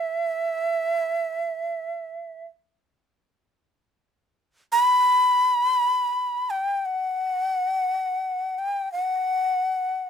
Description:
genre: japanese traditional, Japanese chamber music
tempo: free time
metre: none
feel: none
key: E hirajoshi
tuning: A4 = 440 Hz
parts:
  - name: breathy bright shakuhachi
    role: solo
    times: 0.0-10.1 s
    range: E5 to B5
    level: -22 LUFS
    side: equal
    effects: none
room: little or no reverb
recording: close, detailed microphones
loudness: -21 LUFS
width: side -7 dB against mid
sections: 0.0-10.1 A section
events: none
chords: none

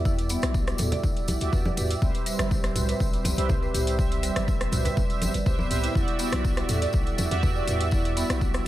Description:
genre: afro house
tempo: 122 BPM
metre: 4/4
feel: straight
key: E minor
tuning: A4 = 438 Hz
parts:
  - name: dark analog pad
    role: sustained chords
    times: 0.0-8.7 s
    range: G3 to E5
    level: -36 LUFS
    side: left 1 dB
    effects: lush chorus, sidechain pumping
  - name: mellow synth brass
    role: stabs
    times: 0.0-8.7 s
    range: F#4 to E5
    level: -31 LUFS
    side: right 3 dB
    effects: chorus, sidechain pumping, dub echo
  - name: warm 808-style bass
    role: bass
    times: 0.0-8.6 s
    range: G1 to E2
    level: -29 LUFS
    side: equal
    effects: sidechain pumping
  - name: marimba with medium mallets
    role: arpeggios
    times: 0.1-8.2 s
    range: G3 to D5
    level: -33 LUFS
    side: right 1 dB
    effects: sidechain pumping, dub echo
  - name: electronic kick drum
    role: drums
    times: 0.1-8.5 s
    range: none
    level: -26 LUFS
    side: equal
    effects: overdrive, studio reverb
  - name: tambourine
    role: percussion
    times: 0.1-8.6 s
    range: none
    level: -38 LUFS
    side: left 1 dB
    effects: none
  - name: afro-pop drum kit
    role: drums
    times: 0.2-8.6 s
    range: hi-hat, rim click, toms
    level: -32 LUFS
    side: equal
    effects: studio reverb
  - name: congas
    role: percussion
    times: 0.8-7.5 s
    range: none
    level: -33 LUFS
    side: right 1 dB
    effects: none
room: digital ambience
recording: none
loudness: -23 LUFS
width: side -14 dB against mid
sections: 0.0-8.7 A section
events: none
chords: 0.0 Em9; 2.0 Cmaj7; 6.0 Em9

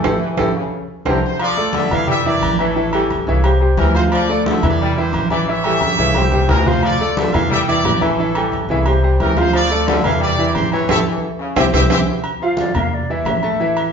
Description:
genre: latin, salsa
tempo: 177 BPM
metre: 4/4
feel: straight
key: D minor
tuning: A4 = 440 Hz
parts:
  - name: brilliant trombone section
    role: second line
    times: 0.0-12.1 s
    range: C#3 to G3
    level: -24 LUFS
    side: left 2 dB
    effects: none
  - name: clear concert grand piano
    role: accompaniment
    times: 0.0-13.9 s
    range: E3 to Bb5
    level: -19 LUFS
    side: equal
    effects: none
  - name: upright bass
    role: bass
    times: 0.0-13.9 s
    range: A1 to E2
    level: -20 LUFS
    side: equal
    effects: none
  - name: congas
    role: percussion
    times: 0.0-13.9 s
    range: none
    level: -23 LUFS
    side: equal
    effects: none
  - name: timbales and agogo bells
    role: percussion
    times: 0.0-13.9 s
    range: none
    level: -24 LUFS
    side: right 2 dB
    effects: none
  - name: bright trumpet section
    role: melody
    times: 1.1-12.0 s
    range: C#4 to F5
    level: -21 LUFS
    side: equal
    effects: none
  - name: mellow concert flute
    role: melody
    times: 12.4-13.9 s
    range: D5 to F5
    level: -22 LUFS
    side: left 3 dB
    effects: none
room: wet large studio reverb, RT60 1.1 s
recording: band playing live in one room, nothing above 7.5 kHz, faint mains hum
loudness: -14 LUFS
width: side -6 dB against mid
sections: 0.0-1.4 A section; 1.4-12.2 B section; 12.2-13.9 C section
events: band accent 0.0-1.4, 10.9-12.2; drum fill 0.7-1.4, 5.8-6.8, 11.6-12.2; flute solo 12.2-13.9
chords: 0.0 A7; 0.7 C; 1.4 Dm; 2.1 Em7b5; 2.8 A7; 3.4 C; 4.1 Dm; 4.8 Edim; 5.5 A7; 6.2 C; 6.8 Dm; 7.5 Em7b5; 8.2 A7; 8.9 C; 9.5 Dm; 10.2 Em7b5; 10.9 A7; 11.6 C; 12.2 Bb; 12.9 Bbmaj7#11

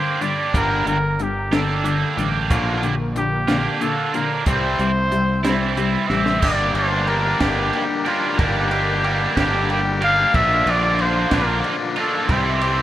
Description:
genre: indie rock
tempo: 61 BPM (dotted quarters)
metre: 6/8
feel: straight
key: G dorian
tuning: A4 = 441 Hz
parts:
  - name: clear trumpet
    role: melody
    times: 0.0-12.8 s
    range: E4 to F5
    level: -22 LUFS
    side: equal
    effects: tape echo
  - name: biting overdriven guitar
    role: riff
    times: 0.0-12.8 s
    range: G2 to E4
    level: -24 LUFS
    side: left 5 dB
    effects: none
  - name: biting overdriven guitar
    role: riff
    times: 0.0-12.8 s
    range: D3 to G4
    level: -24 LUFS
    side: right 6 dB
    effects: analog chorus
  - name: compact cocktail drum kit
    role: drums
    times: 0.2-12.8 s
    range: crash cymbal, hi-hat, kick drum, ride cymbal, snare drum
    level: -25 LUFS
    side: equal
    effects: none
  - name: growling fingered electric bass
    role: bass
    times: 0.5-12.8 s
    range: G1 to C2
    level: -24 LUFS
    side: equal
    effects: overdrive
  - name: analog string pad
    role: sustained chords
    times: 2.5-12.8 s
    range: Bb3 to E6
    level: -33 LUFS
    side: equal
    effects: ensemble chorus
room: light reverb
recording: rough home demo mix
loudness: -17 LUFS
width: side -13 dB against mid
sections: 0.0-6.4 A section; 6.4-12.8 B section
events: drum fill 6.1-6.4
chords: 0.0 Gmadd9; 2.5 Bb; 4.5 C; 6.4 Gmadd9; 10.3 Bb; 12.3 C

